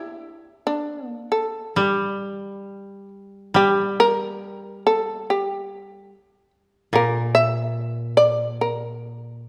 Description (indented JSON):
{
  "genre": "japanese traditional, Japanese chamber music",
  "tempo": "71 BPM",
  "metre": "4/4",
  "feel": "rubato",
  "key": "G kumoi",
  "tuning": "A4 = 444 Hz",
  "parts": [
    { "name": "shamisen", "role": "melody", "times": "0.0-9.5 s", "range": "D4 to E5", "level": "-22 LUFS", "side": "equal", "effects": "none" },
    { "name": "koto", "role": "accompaniment", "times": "1.8-9.4 s", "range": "Bb2 to G3", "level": "-27 LUFS", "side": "equal", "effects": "none" }
  ],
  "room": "moderate recital hall reverb, RT60 1.6 s",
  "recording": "none",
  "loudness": "-22 LUFS",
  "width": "mono",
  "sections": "0.0-3.6 A section; 3.6-9.5 B section",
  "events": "none",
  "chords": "none"
}